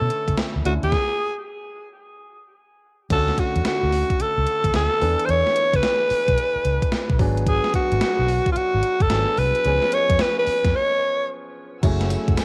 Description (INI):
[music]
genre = R&B, new jack swing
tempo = 110 BPM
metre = 4/4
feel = swing 65% on 16ths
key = unclear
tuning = A4 = 440 Hz
[part]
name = raspy alto saxophone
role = melody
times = 0.0-11.3 s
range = E#4 to C#5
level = -24 LUFS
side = equal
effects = cassette tape
[part]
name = warm baby grand piano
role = accompaniment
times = 0.0-12.4 s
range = D3 to A4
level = -32 LUFS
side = equal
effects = cassette tape
[part]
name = vintage muted fingered electric bass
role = bass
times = 0.0-12.4 s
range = F#1 to B2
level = -26 LUFS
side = equal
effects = none
[part]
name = gated 80s digital drum machine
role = drums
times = 0.1-12.4 s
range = crash cymbal, hi-hat, kick drum, snare drum, tambourine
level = -27 LUFS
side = equal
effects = gated reverb, gated reverb snare, overdrive, cassette tape
[part]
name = dark studio string section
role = sustained chords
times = 11.8-12.4 s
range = A3 to E6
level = -36 LUFS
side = equal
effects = cassette tape
[sound]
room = light reverb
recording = home recording on cassette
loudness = -21 LUFS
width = mono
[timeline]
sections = 0.0-3.1 A section; 3.1-11.8 B section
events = stop 0.9-3.1; break 10.7-11.8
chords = 0.0 Bm11 (rootless); 0.9 N.C.; 3.1 Dmaj7; 5.0 E7sus4; 7.2 G#m7b5; 9.6 C#7; 11.8 F#m9